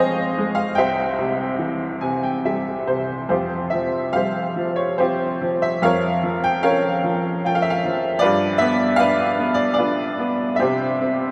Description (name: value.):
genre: classical, lyrical solo piano.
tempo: 69-78 BPM.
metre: 3/4.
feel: rubato.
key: F harmonic minor.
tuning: A4 = 440 Hz.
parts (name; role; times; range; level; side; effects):
bright upright piano; solo; 0.0-11.3 s; C2 to Ab5; -21 LUFS; equal; none.
room: wet cathedral reverb, RT60 7.2 s.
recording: in a vast, echoing space.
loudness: -21 LUFS.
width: mono.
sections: 0.0-11.3 A section.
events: upright piano fill 1.6-3.3.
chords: 0.0 Fm7; 0.8 C; 3.3 Fsus2; 5.8 Bbm/F; 8.2 G7; 10.6 C.